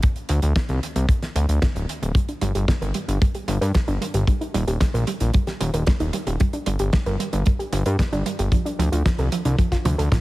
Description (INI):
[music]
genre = italo disco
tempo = 113 BPM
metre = 4/4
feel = straight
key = G minor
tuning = A4 = 440 Hz
[part]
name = damped 70s drum kit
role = drums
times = 0.0-10.2 s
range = hi-hat, snare drum, toms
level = -28 LUFS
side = equal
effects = none
[part]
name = kick drum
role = drums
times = 0.0-10.2 s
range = none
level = -20 LUFS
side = equal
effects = none
[part]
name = fat analog bass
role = bass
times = 0.3-10.1 s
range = D1 to G2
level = -22 LUFS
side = equal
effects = none
[part]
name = soft round pluck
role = arpeggios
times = 2.2-10.2 s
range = F3 to Bb4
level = -27 LUFS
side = right 3 dB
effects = chorus, digital delay
[sound]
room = light reverb, small room ambience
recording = heavily compressed radio sound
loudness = -19 LUFS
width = side -18 dB against mid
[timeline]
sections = 0.0-10.2 A section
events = drum fill 9.9-10.2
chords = 0.0 Csus2/D; 2.2 G5; 4.3 Eb; 6.4 G5; 8.5 Dm